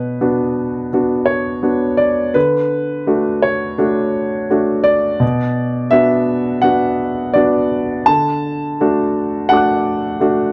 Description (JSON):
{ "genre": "neoclassical minimalist piano", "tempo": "84 BPM", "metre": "4/4", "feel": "rubato", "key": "D major", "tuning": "A4 = 440 Hz", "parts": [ { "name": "clear concert grand piano", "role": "solo", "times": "0.0-10.5 s", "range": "B2 to F#6", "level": "-16 LUFS", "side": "equal", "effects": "none" } ], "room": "light reverb", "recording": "dry, close 1970s-style studio recording", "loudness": "-16 LUFS", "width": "mono", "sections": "0.0-10.5 A section", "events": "none", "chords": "0.0 Bm; 2.3 D; 5.2 Bm; 8.1 D", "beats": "0.20 0.92 1.63 | 2.35 3.07 3.79 4.51 | 5.22 5.92 6.63 7.35 | 8.08 8.80 9.51 10.21" }